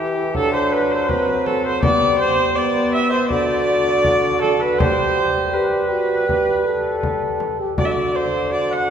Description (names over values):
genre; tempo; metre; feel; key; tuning
classical, renaissance-style consort dance; 81 BPM; 4/4; straight; D mixolydian; A4 = 436 Hz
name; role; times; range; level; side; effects
bright oboe; melody; 0.0-8.9 s; G4 to F#5; -27 LUFS; left 4 dB; none
warm viola; second line; 0.0-8.9 s; G4 to F#5; -20 LUFS; right 2 dB; none
warm trombone; accompaniment; 0.0-8.9 s; B3 to A4; -23 LUFS; left 1 dB; none
warm bassoon; bass; 0.0-8.9 s; D3 to G3; -24 LUFS; equal; none
frame drum; percussion; 0.3-8.1 s; none; -27 LUFS; left 2 dB; none
room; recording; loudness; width
wet church reverb, RT60 3.4 s; heard from further back in the room; -16 LUFS; side -8 dB against mid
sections
0.0-8.9 A section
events
none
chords
0.4 D/F#; 1.8 G; 3.3 D; 4.8 G; 7.8 D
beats
0.36 1.09 | 1.83 2.57 3.31 4.05 | 4.80 5.55 6.29 7.04 | 7.79 8.53